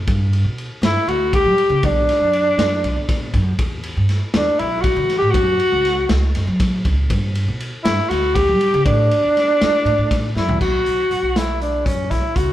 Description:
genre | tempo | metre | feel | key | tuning
progressive instrumental, band music in an uneven meter | 239 BPM (eighths) | 7/8 | straight | B minor | A4 = 441 Hz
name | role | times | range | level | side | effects
upright bass | bass | 0.0-12.5 s | B1 to G3 | -20 LUFS | equal | none
raw garage drum kit | drums | 0.1-12.5 s | crash cymbal, hi-hat, kick drum, ride cymbal, snare drum, toms | -22 LUFS | equal | none
mellow tenor saxophone | melody | 0.8-12.5 s | C#4 to G4 | -17 LUFS | equal | none
room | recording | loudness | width
light reverb | heard from further back in the room | -15 LUFS | side -13 dB against mid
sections
0.0-10.6 A section; 10.6-12.5 B section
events
drum fill 10.4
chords
0.1 G; 1.8 Bm; 3.6 Em; 5.3 F#5; 7.1 G; 8.8 Asus4; 10.6 B5

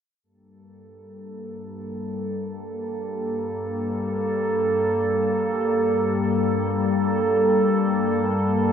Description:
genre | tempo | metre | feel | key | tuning
ambient | free time | none | none | G minor | A4 = 440 Hz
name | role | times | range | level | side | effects
evolving wavetable pad | sustained chords | 1.2-8.7 s | G2 to A4 | -21 LUFS | equal | chorus, built-in reverb
room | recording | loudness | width
wet huge ambient reverb, RT60 8.7 s | dark, warm production | -21 LUFS | side -8 dB against mid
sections
0.2-8.7 A section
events
fade-in on ambient pad 0.2-8.7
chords
0.2 Gmadd9

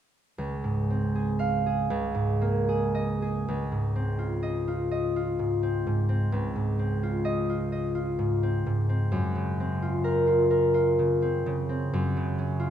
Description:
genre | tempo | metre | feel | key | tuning
classical, solo harp piece | 36-46 BPM (dotted quarters) | 6/8 | rubato | Db major | A4 = 442 Hz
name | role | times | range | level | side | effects
concert harp | solo | 0.4-12.7 s | Db2 to F5 | -24 LUFS | equal | none
room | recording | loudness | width
moderate recital hall reverb, RT60 1.7 s | none | -24 LUFS | side -9 dB against mid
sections
0.4-3.5 A section; 3.5-12.7 B section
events
none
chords
0.4 Dbmaj7; 1.9 Bbm11/Db; 3.5 Dbmaj9; 9.1 Gbmaj7#11; 11.9 Ebm9/Gb (rootless)

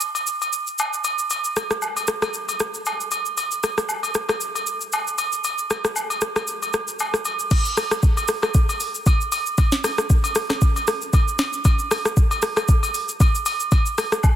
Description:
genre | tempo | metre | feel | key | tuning
amapiano | 116 BPM | 4/4 | swing 55% on 16ths | none | none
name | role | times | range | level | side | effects
smooth R&B drum kit | drums | 0.0-14.4 s | crash cymbal, hi-hat, kick drum, rim click, shaker, snare drum | -20 LUFS | equal | soft clipping on snare
agogo bells and woodblock | percussion | 0.1-14.4 s | none | -25 LUFS | right 2 dB | none
room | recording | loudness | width
light reverb | dense, heavily limited modern master | -19 LUFS | side -11 dB against mid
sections
0.0-7.5 A section; 7.5-14.4 B section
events
kick muted 5.4-7.5; drop 7.5-14.4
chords
none

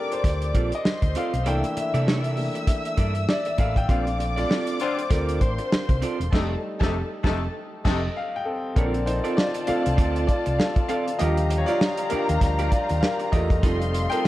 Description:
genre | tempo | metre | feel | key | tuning
lush 1970s-style soul | 99 BPM | 4/4 | swing 58% on 16ths | Bb major | A4 = 438 Hz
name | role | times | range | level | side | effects
dark studio violin section | second line | 0.0-14.3 s | F4 to E6 | -31 LUFS | left 2 dB | none
clear concert grand piano | accompaniment | 0.0-14.3 s | D3 to G5 | -27 LUFS | left 2 dB | none
electric guitar through a small old amp | riff | 0.1-14.2 s | Bb3 to Eb5 | -32 LUFS | right 6 dB | warbly pitch drift
warm soul drum kit | drums | 0.1-14.3 s | crash cymbal, hi-hat, kick drum, snare drum | -24 LUFS | equal | none
hollow-body short-scale fingered electric bass | bass | 0.2-14.1 s | E1 to C3 | -26 LUFS | equal | none
mellow horn section | stabs | 3.9-8.0 s | C3 to F4 | -33 LUFS | left 6 dB | none
room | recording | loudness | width
light reverb, small room ambience | dark, warm production | -21 LUFS | side -15 dB against mid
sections
0.0-8.8 A section; 8.8-14.3 B section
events
grand piano solo 0.0-8.8, 8.8-14.3; band accent 6.3-8.8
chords
0.0 Bbmaj9; 1.5 C13; 3.9 Bbmaj9; 6.3 F9; 8.8 Bbmaj9; 11.2 Ebmaj9; 13.6 F7

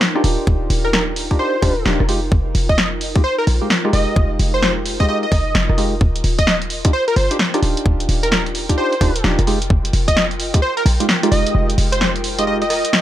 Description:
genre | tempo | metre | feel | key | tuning
UK garage, two-step garage | 130 BPM | 4/4 | swing 63% on 16ths | F dorian | A4 = 440 Hz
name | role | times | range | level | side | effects
punchy analog drum machine | drums | 0.0-13.0 s | hi-hat, rim click, snare drum | -20 LUFS | equal | none
airy breathy pad | texture | 0.0-13.0 s | Eb4 to G5 | -28 LUFS | equal | chorus, sidechain pumping
percussive organ stab | stabs | 0.2-12.6 s | Ab3 to G4 | -23 LUFS | right 1 dB | chorus, digital delay
short 808-style bass | bass | 0.2-12.8 s | Eb1 to Bb1 | -19 LUFS | equal | none
electronic kick drum | drums | 0.5-10.6 s | none | -16 LUFS | equal | overdrive
plucky unison lead | melody | 0.8-13.0 s | Bb4 to Eb5 | -22 LUFS | equal | digital delay
room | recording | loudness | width
little or no reverb | none | -14 LUFS | side -12 dB against mid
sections
0.0-13.0 A section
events
kick drops out 11.5-13.0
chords
0.0 Ebmaj9; 2.1 Fm9; 6.0 Ebmaj9; 9.5 Fm9

